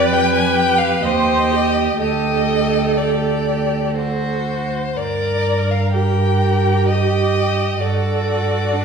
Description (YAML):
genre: classical, slow romantic movement for string quartet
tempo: 59-67 BPM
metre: 3/4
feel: rubato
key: G minor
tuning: A4 = 440 Hz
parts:
  - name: warm violin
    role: melody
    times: 0.0-8.8 s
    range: C5 to Ab5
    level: -21 LUFS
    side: left 4 dB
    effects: none
  - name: rich violin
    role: second line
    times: 0.0-8.8 s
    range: F#4 to Bb4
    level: -24 LUFS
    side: equal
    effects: none
  - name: rich viola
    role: accompaniment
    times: 0.0-8.8 s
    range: D4 to C5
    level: -21 LUFS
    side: right 4 dB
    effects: none
  - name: warm cello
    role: bass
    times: 0.0-8.8 s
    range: D2 to G2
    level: -20 LUFS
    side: right 2 dB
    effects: none
room: wet recital hall reverb, RT60 1.4 s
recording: heard from further back in the room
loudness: -15 LUFS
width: side -6 dB against mid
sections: 0.0-8.8 A section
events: none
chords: 0.0 G7/F; 1.0 Cm/Eb; 2.0 Dsus4; 5.0 Gm; 7.8 D/G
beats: 0.11 1.02 | 1.99 2.97 3.96 | 4.96 5.93 6.89 | 7.81 8.73